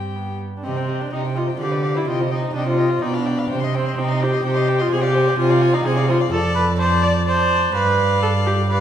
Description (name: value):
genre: quick classical-period movement for string quartet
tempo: 126 BPM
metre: 3/4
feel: straight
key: C minor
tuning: A4 = 440 Hz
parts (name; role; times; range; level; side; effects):
- rich violin; melody; 0.0-8.8 s; D5 to C6; -30 LUFS; left 9 dB; none
- warm violin; second line; 0.0-8.8 s; G4 to F5; -27 LUFS; left 2 dB; none
- warm viola; accompaniment; 0.0-8.8 s; B3 to D5; -20 LUFS; left 1 dB; none
- rich cello; bass; 0.0-8.8 s; F2 to D3; -21 LUFS; right 3 dB; none
room: wet recital hall reverb, RT60 1.5 s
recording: dark, warm production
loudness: -17 LUFS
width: side -9 dB against mid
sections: 0.6-8.8 A section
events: none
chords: 0.1 G; 0.6 Cm; 1.6 Bdim/D; 2.1 Cm; 3.0 G7/B; 3.5 Cm; 4.9 Dm7b5/C; 6.3 Dm7/F; 7.8 G7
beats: 0.14 | 0.64 1.12 1.60 | 2.07 2.55 3.02 | 3.50 3.97 4.45 | 4.91 5.38 5.85 | 6.32 6.80 7.28 | 7.75 8.23 8.71